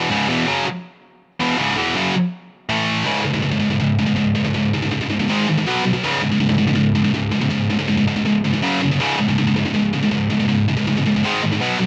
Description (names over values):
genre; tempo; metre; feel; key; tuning
metal; 161 BPM; 4/4; straight; C# minor; A4 = 441 Hz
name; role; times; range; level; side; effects
high-gain distorted guitar; solo; 0.0-11.9 s; C#2 to B3; -19 LUFS; equal; distortion
room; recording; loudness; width
little or no reverb; rough home demo mix; -19 LUFS; mono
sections
0.0-3.1 A section; 3.1-11.9 B section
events
none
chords
0.0 C#m; 2.7 A5; 3.1 C#5; 5.3 G#5; 5.7 B5; 6.0 C#5; 8.6 F#5; 9.0 C#5; 11.2 G#5